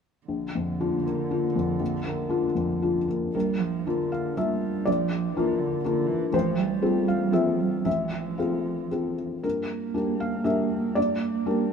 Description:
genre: neoclassical piano and strings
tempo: 109-124 BPM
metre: 3/4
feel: rubato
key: unclear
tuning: A4 = 436 Hz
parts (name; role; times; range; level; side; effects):
- dark cello; second line; 0.3-11.7 s; D3 to Bb3; -29 LUFS; right 8 dB; none
- felt-muted upright piano; accompaniment; 0.3-11.7 s; A1 to F5; -25 LUFS; left 3 dB; none
room: moderate plate reverb, RT60 2.7 s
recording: minimal, uncompressed stereo recording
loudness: -24 LUFS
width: side -6 dB against mid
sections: 0.3-3.3 A section; 3.3-11.7 B section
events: none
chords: 0.3 Bb; 6.3 F/A; 9.4 Gm

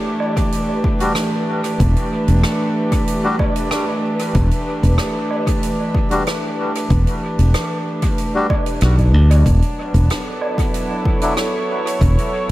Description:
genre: ambient dub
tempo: 94 BPM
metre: 4/4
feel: straight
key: E dorian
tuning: A4 = 442 Hz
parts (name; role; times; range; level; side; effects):
- dark studio string section; sustained chords; 0.0-12.5 s; E3 to C#5; -21 LUFS; right 1 dB; none
- soft-mallet drum kit; drums; 0.2-12.5 s; hi-hat, rim click, woodblock; -27 LUFS; right 1 dB; studio reverb, dub echo
- electronic kick drum; drums; 0.4-12.1 s; none; -20 LUFS; equal; overdrive, studio reverb
- melodica; stabs; 1.0-11.3 s; F#3 to F#4; -24 LUFS; left 2 dB; dub echo
- modern bright fingered electric bass; bass; 1.8-12.2 s; E1 to D2; -12 LUFS; equal; none
room: light reverb, studio reverb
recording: echo-heavy mix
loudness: -15 LUFS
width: side -16 dB against mid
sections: 0.0-12.5 A section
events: none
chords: 0.0 Em7; 9.5 Dadd9/E

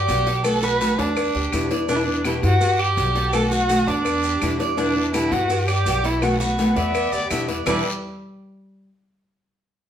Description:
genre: latin, Cuban son and guajira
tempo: 166 BPM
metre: 4/4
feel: straight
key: E minor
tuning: A4 = 437 Hz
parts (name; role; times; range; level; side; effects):
- dark violin; melody; 0.0-7.8 s; G3 to B4; -23 LUFS; right 1 dB; none
- Cuban tres; arpeggios; 0.0-7.8 s; D4 to D5; -27 LUFS; right 2 dB; none
- upright bass; bass; 0.0-7.8 s; B1 to G2; -26 LUFS; equal; none
- nylon-string guitar; accompaniment; 0.1-7.8 s; E2 to F#4; -25 LUFS; left 2 dB; none
- cowbell and bongos; percussion; 0.1-7.7 s; none; -31 LUFS; left 3 dB; none
- guiro; percussion; 0.1-7.8 s; none; -35 LUFS; left 4 dB; none
- maracas; percussion; 0.1-7.7 s; none; -36 LUFS; right 2 dB; none
- claves; percussion; 0.4-7.8 s; none; -32 LUFS; left 2 dB; none
- warm trumpet; second line; 6.7-7.8 s; B4 to F#5; -29 LUFS; left 2 dB; none
room: wet large studio reverb, RT60 0.9 s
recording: band playing live in one room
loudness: -18 LUFS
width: side -9 dB against mid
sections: 0.0-7.7 A section; 7.7-9.1 B section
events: none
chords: 0.4 B7; 1.2 Em7; 2.6 Gmaj7; 3.3 B7; 4.1 Em7; 5.5 Gmaj7; 6.2 B7; 6.9 Em7; 7.7 E7(no3)

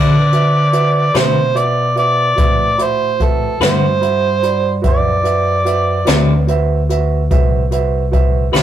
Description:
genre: slow blues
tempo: 49 BPM (dotted quarters)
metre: 12/8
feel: straight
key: D mixolydian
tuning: A4 = 440 Hz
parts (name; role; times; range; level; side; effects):
- overdriven harmonica; melody; 0.0-6.5 s; A4 to D5; -16 LUFS; right 2 dB; none
- clean electric guitar; accompaniment; 0.0-8.6 s; D3 to B4; -16 LUFS; left 2 dB; tremolo
- clear concert grand piano; accompaniment; 0.0-8.6 s; F#4 to B5; -20 LUFS; right 6 dB; none
- fingered electric bass; bass; 0.0-8.6 s; B1 to D3; -18 LUFS; left 1 dB; none
- jazz brush drum kit; drums; 0.3-8.6 s; hi-hat, kick drum, snare drum; -17 LUFS; left 1 dB; none
room: wet studio reverb, RT60 0.6 s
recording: rough rehearsal-room recording, warm saturation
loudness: -12 LUFS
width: side -11 dB against mid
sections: 0.0-8.6 A section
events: none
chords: 0.0 D13

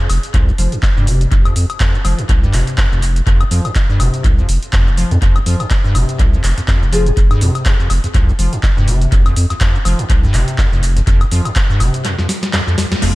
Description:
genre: acid house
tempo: 123 BPM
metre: 4/4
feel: swing 57% on 16ths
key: F minor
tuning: A4 = 440 Hz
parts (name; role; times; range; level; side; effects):
- acid bass, square; riff; 0.0-13.2 s; F2 to F3; -19 LUFS; equal; lush chorus, vintage 12-bit sampler grit
- booming analog drum machine; drums; 0.0-13.1 s; congas, crash cymbal, handclaps, hi-hat, shaker, snare drum, woodblock; -21 LUFS; left 1 dB; tape echo
- saturated sub bass; bass; 0.1-13.2 s; F1 to F2; -15 LUFS; equal; sidechain pumping
- electronic kick drum; drums; 0.3-11.7 s; none; -15 LUFS; equal; none
- breathy flute-like synth lead; melody; 6.9-7.1 s; Ab4; -24 LUFS; left 3 dB; ensemble chorus, vintage 12-bit sampler grit, dub echo
room: little or no reverb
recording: echo-heavy mix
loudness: -12 LUFS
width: side -19 dB against mid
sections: 0.0-13.0 A section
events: break 12.0-13.0; drum fill 12.0-13.0; band accent 12.9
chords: 0.0 F5

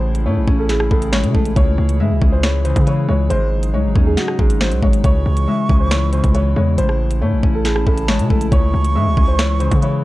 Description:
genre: hip hop, drill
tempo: 138 BPM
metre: 4/4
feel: half-time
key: C# harmonic minor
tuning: A4 = 441 Hz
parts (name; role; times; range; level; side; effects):
- dark grand piano; melody; 0.0-10.0 s; F#4 to E5; -24 LUFS; right 1 dB; none
- Celtic harp; accompaniment; 0.0-10.0 s; G#2 to E4; -22 LUFS; left 4 dB; none
- hollow soft pad; sustained chords; 0.0-10.0 s; C#3 to G#4; -27 LUFS; right 1 dB; chorus
- distorted 808-style bass; bass; 0.0-10.0 s; G#1 to C#3; -18 LUFS; equal; distortion
- drill drum kit; drums; 0.1-9.9 s; finger snaps, hi-hat, kick drum, rim click, snare drum; -17 LUFS; equal; vintage 12-bit sampler grit
- breathy concert flute; second line; 5.0-10.0 s; A5 to C#6; -26 LUFS; right 4 dB; tape echo
room: digital ambience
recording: dry, gritty hardware recording, cassette tape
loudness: -14 LUFS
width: side -17 dB against mid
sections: 0.0-10.0 A section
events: none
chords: 0.0 Amaj7; 1.6 C#m; 3.3 G#7sus4; 5.0 C#m; 6.8 Amaj7; 8.5 C#m

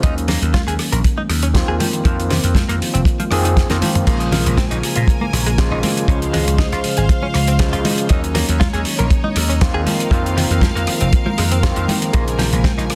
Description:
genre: nu-disco, nu disco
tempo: 119 BPM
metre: 4/4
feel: swing 54% on 16ths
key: Bb minor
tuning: A4 = 440 Hz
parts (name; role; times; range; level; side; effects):
- overdriven tine electric piano; accompaniment; 0.0-12.9 s; Db3 to C5; -24 LUFS; equal; vintage 12-bit sampler grit, sidechain pumping, tape echo
- direct-recorded clean electric guitar; riff; 0.0-12.8 s; C3 to Bb4; -29 LUFS; equal; subtle chorus, tape echo
- vintage slap bass; bass; 0.0-12.9 s; F1 to Bb2; -22 LUFS; equal; none
- damped 70s drum kit; drums; 0.0-12.9 s; crash cymbal, hi-hat, rim click, snare drum, toms; -25 LUFS; equal; studio reverb
- kick drum; drums; 0.0-12.8 s; none; -19 LUFS; equal; studio reverb
- congas; percussion; 0.3-12.7 s; none; -28 LUFS; equal; none
- clear symphonic string section; sustained chords; 4.1-12.9 s; Eb4 to Ab5; -30 LUFS; equal; sidechain pumping
room: light reverb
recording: dense, heavily limited modern master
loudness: -17 LUFS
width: mono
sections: 0.0-12.9 A section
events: drum fill 3.6-4.1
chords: 0.0 Ebm7; 1.8 F7sus4; 4.1 Bbm7; 6.1 Dbmaj7; 8.1 Ebm7; 9.9 F7sus4; 12.1 Bbm7

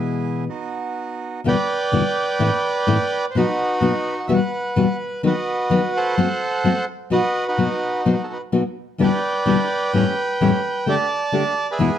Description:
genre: tango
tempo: 128 BPM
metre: 4/4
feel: rubato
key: E minor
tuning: A4 = 435 Hz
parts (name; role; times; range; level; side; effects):
- nylon-string guitar; accompaniment; 0.0-11.9 s; E2 to B4; -19 LUFS; left 3 dB; none
- bandoneon; stabs; 0.0-1.4, 9.0-12.0 s; E3 to G#4; -28 LUFS; right 6 dB; none
- bandoneon; melody; 1.5-12.0 s; D#4 to A5; -21 LUFS; right 2 dB; plate reverb
room: light reverb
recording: dark, warm production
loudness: -18 LUFS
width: side -10 dB against mid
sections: 0.0-1.5 A section; 1.5-12.0 B section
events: none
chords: 0.5 B; 1.5 Em7; 2.4 Am; 3.3 B; 4.3 Emadd9; 5.2 B/D#; 6.2 F#dim; 7.1 B; 9.0 Em7; 9.9 A7/E; 10.9 Dsus4

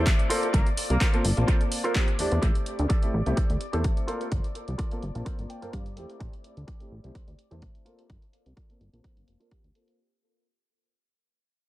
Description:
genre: filtered disco house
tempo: 127 BPM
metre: 4/4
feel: swing 53% on 16ths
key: G dorian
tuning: A4 = 443 Hz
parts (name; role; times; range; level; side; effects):
- bright concert grand piano; accompaniment; 0.0-10.0 s; A3 to A5; -33 LUFS; equal; phaser, sidechain pumping, low-pass filter, analog delay
- dark studio string section; sustained chords; 0.0-10.0 s; D5 to D6; -40 LUFS; left 2 dB; sidechain pumping, low-pass filter
- direct-recorded clean electric guitar; riff; 0.0-9.7 s; F4 to G5; -36 LUFS; right 1 dB; sidechain pumping, low-pass filter, analog delay
- plucky analog bass; bass; 0.0-9.7 s; F1 to G2; -27 LUFS; equal; tube saturation, sidechain pumping, low-pass filter
- electronic kick drum; drums; 0.1-9.6 s; none; -26 LUFS; equal; overdrive
- punchy analog drum machine; drums; 0.1-10.0 s; handclaps, hi-hat; -33 LUFS; equal; overdrive, sidechain pumping on hats, low-pass filter on hats, low-pass filter on snare, low-pass filter on room, analog delay
- bright horn section; melody; 0.5-2.4 s; Bb3 to D5; -36 LUFS; left 1 dB; sidechain pumping, low-pass filter, analog delay
room: little or no reverb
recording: echo-heavy mix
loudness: -23 LUFS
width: side -16 dB against mid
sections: 0.0-10.0 A section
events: fade-out 0.0-10.0; filter sweep 0.0-10.0; clean electric guitar fill 5.3-6.2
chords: 0.3 Gm11; 2.4 Am7; 4.1 Gm11; 6.2 Am7; 7.9 Gm11

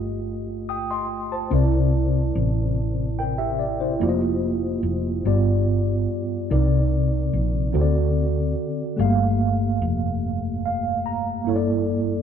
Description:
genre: slow gospel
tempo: 48 BPM (dotted quarters)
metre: 6/8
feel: straight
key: unclear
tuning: A4 = 440 Hz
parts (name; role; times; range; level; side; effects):
- mellow tine electric piano; accompaniment; 0.0-12.2 s; G2 to Eb6; -23 LUFS; equal; medium stereo tremolo
- hollow-body short-scale fingered electric bass; bass; 0.0-12.2 s; F1 to D2; -24 LUFS; equal; none
room: moderate studio reverb, RT60 0.6 s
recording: band playing live in one room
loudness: -20 LUFS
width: side -8 dB against mid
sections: 0.0-12.2 A section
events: tine electric piano fill 10.2-11.5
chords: 0.0 F9; 1.5 C9; 4.0 F9sus4; 5.3 G7; 6.5 Cm9; 7.8 D7; 9.0 Gm9; 11.5 C13 (rootless)

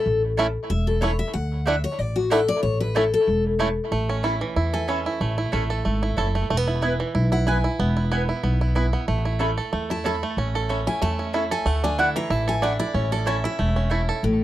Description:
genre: bluegrass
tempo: 186 BPM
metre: 4/4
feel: swing 54% on 8ths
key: A major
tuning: A4 = 440 Hz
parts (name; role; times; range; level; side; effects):
- picked steel-string acoustic guitar; accompaniment; 0.0-14.4 s; A2 to B5; -25 LUFS; left 4 dB; none
- upright bass; bass; 0.1-14.4 s; E1 to E2; -24 LUFS; equal; none
- bluegrass banjo; arpeggios; 0.4-14.2 s; E3 to A4; -26 LUFS; right 4 dB; tape echo
- mandolin; stabs; 0.4-14.0 s; A3 to B5; -26 LUFS; right 1 dB; none
room: little or no reverb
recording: dry, close 1970s-style studio recording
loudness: -21 LUFS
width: side -14 dB against mid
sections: 0.0-3.9 A section; 3.9-14.2 A section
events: steel-string acoustic guitar solo 0.0-14.2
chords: 0.0 Aadd9; 1.3 Dadd9; 2.6 A; 3.9 Aadd9; 6.5 E; 9.1 Aadd9; 11.7 Dadd9; 12.9 A

